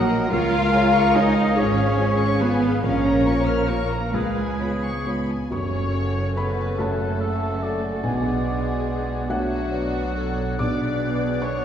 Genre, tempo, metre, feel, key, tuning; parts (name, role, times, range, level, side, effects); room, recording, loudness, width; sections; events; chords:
cinematic, emotional film score for orchestra; 47 BPM (dotted quarters); 6/8; rubato; F# minor from 5.5 s; A4 = 440 Hz
muted symphonic violin section; melody; 0.0-11.6 s; F#4 to F6; -32 LUFS; left 3 dB
dark clarinet; second line; 0.0-11.6 s; Ab4 to C#5; -35 LUFS; left 2 dB
mellow hollow small flute group; second line; 0.0-11.6 s; B4 to F#5; -34 LUFS; left 1 dB
muted studio violin section; second line; 0.0-11.6 s; D4 to F5; -30 LUFS; left 4 dB
warm oboe; second line; 0.0-11.6 s; Ab4 to F#5; -31 LUFS; equal
felt-muted upright piano; accompaniment; 0.0-11.6 s; Bb1 to D6; -28 LUFS; equal
muted studio viola section; accompaniment; 0.0-11.6 s; C#3 to Cb5; -31 LUFS; right 1 dB
mellow French horn section; sustained chords; 0.0-11.6 s; F3 to C#5; -31 LUFS; left 3 dB
muted symphonic cello section; bass; 0.0-11.6 s; F#2 to F4; -26 LUFS; right 1 dB
muted symphonic double bass section; bass; 0.0-11.6 s; F#1 to Db2; -26 LUFS; right 2 dB
timpani; percussion; 2.8-6.8 s; F#2 to Bb2; -37 LUFS; left 1 dB
wet scoring stage reverb, RT60 1.6 s; heard from further back in the room; -20 LUFS; side -9 dB against mid
0.0-5.5 A section; 5.5-11.6 B section
0.3 Db; 2.8 Bbm; 4.1 Db7; 5.5 F#madd9; 8.0 Bm7; 10.6 G#dim/B